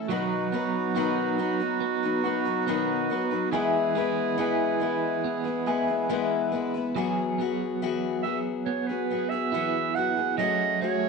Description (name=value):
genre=acoustic folk duo or small band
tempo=70 BPM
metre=4/4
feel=straight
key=E major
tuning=A4 = 439 Hz
part: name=picked steel-string acoustic guitar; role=accompaniment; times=0.0-11.1 s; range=B2 to B4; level=-28 LUFS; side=left 10 dB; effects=none
part: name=electric guitar at the edge of break-up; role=arpeggios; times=0.0-11.1 s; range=E3 to G#4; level=-31 LUFS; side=right 8 dB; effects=tremolo
part: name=clear clarinet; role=second line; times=0.1-11.1 s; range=F#4 to F#5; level=-29 LUFS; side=right 11 dB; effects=none
part: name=pedal harmonium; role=sustained chords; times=0.1-6.9 s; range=F#3 to B4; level=-35 LUFS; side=right 1 dB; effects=none
room=wet spring reverb, RT60 1.7 s, small room reverb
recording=1960s-style stereo with parts hard left and right, nothing above 10.8 kHz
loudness=-24 LUFS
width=side -4 dB against mid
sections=0.0-7.0 A section; 7.0-11.1 B section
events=clarinet solo 7.0-11.1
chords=0.1 B; 3.5 E; 7.0 Eadd9; 10.4 F#madd9